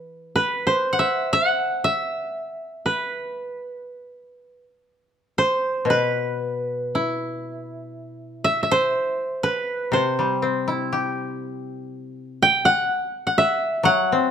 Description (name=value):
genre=japanese traditional, Japanese chamber music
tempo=60 BPM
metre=4/4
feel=rubato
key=E hirajoshi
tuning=A4 = 439 Hz
part: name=koto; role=melody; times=0.0-14.3 s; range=E4 to G5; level=-21 LUFS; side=right 1 dB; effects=none
part: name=koto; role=accompaniment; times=0.0-14.3 s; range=B2 to G4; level=-24 LUFS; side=left 3 dB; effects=none
room=light reverb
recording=close, detailed microphones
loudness=-20 LUFS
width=side -8 dB against mid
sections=0.0-8.0 A section; 8.0-14.3 B section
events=none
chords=none